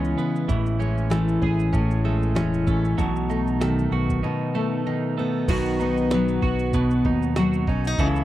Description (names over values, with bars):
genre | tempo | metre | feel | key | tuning
acoustic pop | 96 BPM | 4/4 | swing 55% on 16ths | unclear | A4 = 441 Hz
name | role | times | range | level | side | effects
fingerpicked steel-string acoustic guitar | accompaniment | 0.0-8.2 s | A2 to F#4 | -22 LUFS | left 2 dB | none
twelve-string electric guitar | arpeggios | 0.0-8.2 s | D#3 to A4 | -29 LUFS | right 10 dB | none
modern bright fingered electric bass | bass | 0.0-8.2 s | E1 to D#2 | -26 LUFS | right 1 dB | none
jungle sampler-style drum kit | drums | 0.0-8.2 s | crash cymbal, kick drum, shaker, snare drum | -27 LUFS | right 1 dB | none
room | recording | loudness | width
light reverb | dry, close 1970s-style studio recording | -20 LUFS | side -14 dB against mid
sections
0.0-5.5 A section; 5.5-8.2 B section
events
break 4.2-5.5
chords
0.5 Amaj7; 3.0 B7; 5.5 B